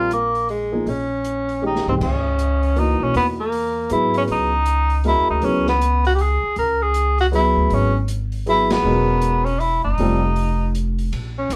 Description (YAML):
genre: modal jazz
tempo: 158 BPM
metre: 3/4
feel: swing 63% on 8ths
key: C# dorian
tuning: A4 = 439 Hz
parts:
  - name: breathy tenor saxophone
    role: melody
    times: 0.0-11.6 s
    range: Ab3 to A#4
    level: -22 LUFS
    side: equal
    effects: none
  - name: warm concert grand piano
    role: accompaniment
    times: 0.0-10.2 s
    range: Eb3 to A#4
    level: -24 LUFS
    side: equal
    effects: none
  - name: upright bass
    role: bass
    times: 0.0-11.6 s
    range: E1 to G#2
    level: -24 LUFS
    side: equal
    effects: none
  - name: open jazz drum kit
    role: drums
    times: 0.1-11.6 s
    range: crash cymbal, hi-hat, kick drum, ride cymbal, snare drum, toms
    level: -33 LUFS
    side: equal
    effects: none
room: moderate small room reverb, RT60 0.6 s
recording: band playing live in one room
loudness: -19 LUFS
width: mono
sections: 0.0-2.0 A section; 2.0-11.1 B section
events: drum fill 1.6-2.0; band accent 8.7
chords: 0.0 Dbsus2; 2.0 C#m7; 10.0 F7